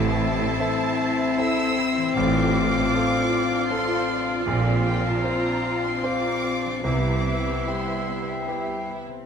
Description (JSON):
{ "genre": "cinematic, emotional film score for orchestra", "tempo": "72-79 BPM", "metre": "3/4", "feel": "rubato", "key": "C major", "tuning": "A4 = 439 Hz", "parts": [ { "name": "rich studio violin section", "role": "melody", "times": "0.0-8.5 s", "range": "G5 to E6", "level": "-31 LUFS", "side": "equal", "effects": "none" }, { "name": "clear oboe", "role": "second line", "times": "0.0-8.9 s", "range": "E5 to F5", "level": "-34 LUFS", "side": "right 3 dB", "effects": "none" }, { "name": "clear symphonic violin section", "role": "second line", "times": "0.0-9.3 s", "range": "A3 to E5", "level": "-33 LUFS", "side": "left 3 dB", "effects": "none" }, { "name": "concert flute", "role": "second line", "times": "0.0-8.9 s", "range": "C7", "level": "-32 LUFS", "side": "left 2 dB", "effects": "none" }, { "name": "bright grand piano", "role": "accompaniment", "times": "0.0-9.3 s", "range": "A1 to C5", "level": "-29 LUFS", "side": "right 2 dB", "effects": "none" }, { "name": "rich symphonic viola section", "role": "accompaniment", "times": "0.0-9.1 s", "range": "B3 to F4", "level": "-31 LUFS", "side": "right 2 dB", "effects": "none" }, { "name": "mellow French horn section", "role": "sustained chords", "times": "0.0-8.9 s", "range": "G3 to B4", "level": "-27 LUFS", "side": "left 4 dB", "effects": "none" }, { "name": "concert harp", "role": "arpeggios", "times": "0.0-9.3 s", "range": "A2 to D6", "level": "-33 LUFS", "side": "left 10 dB", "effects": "none" }, { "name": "clear symphonic cello section", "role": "bass", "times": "0.0-7.5 s", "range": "A2 to C3", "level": "-30 LUFS", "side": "right 2 dB", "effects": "none" }, { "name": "rich symphonic double bass section", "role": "bass", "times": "0.0-7.5 s", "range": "A1 to C2", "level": "-29 LUFS", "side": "right 4 dB", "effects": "none" } ], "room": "moderate concert hall reverb, RT60 2.3 s", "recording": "close, detailed microphones", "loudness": "-21 LUFS", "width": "side -7 dB against mid", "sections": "0.0-9.3 A section", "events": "none", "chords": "0.0 Am; 2.2 Dm7/A; 4.5 Bbadd9; 6.8 Cmaj7" }